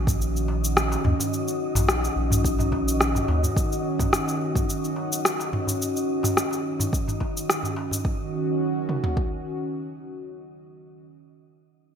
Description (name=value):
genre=organic downtempo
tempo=107 BPM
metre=4/4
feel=straight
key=Eb minor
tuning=A4 = 441 Hz
part: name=warm analog pad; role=sustained chords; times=0.0-11.1 s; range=Eb3 to Gb4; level=-28 LUFS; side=right 1 dB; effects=chorus, sidechain pumping
part: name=round analog bass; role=bass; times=0.0-3.5 s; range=Bb1 to Eb2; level=-25 LUFS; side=equal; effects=none
part: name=wind-like tuned noise texture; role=texture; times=0.0-8.1 s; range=Eb4 to Eb5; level=-34 LUFS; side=left 2 dB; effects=built-in reverb, wide subtle chorus
part: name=deep house drum kit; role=drums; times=0.1-9.3 s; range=kick drum, toms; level=-26 LUFS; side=equal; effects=overdrive, studio ambience
part: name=organic electronic drum kit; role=drums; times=0.1-8.0 s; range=cabasa, rim click, toms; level=-25 LUFS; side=equal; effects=studio ambience, gated reverb
part: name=darbuka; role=percussion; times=0.5-8.0 s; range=none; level=-34 LUFS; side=left 1 dB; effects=none
room=moderate lush hall reverb, RT60 2.0 s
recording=bright 1980s-style digital production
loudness=-22 LUFS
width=side -8 dB against mid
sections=0.0-8.1 A section; 8.1-10.3 B section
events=none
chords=0.0 Ebm7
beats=0.20 0.76 | 1.32 1.88 2.44 3.00 | 3.56 4.13 4.69 5.25 | 5.81 6.37 6.93 7.49 | 8.05 8.61 9.17 9.73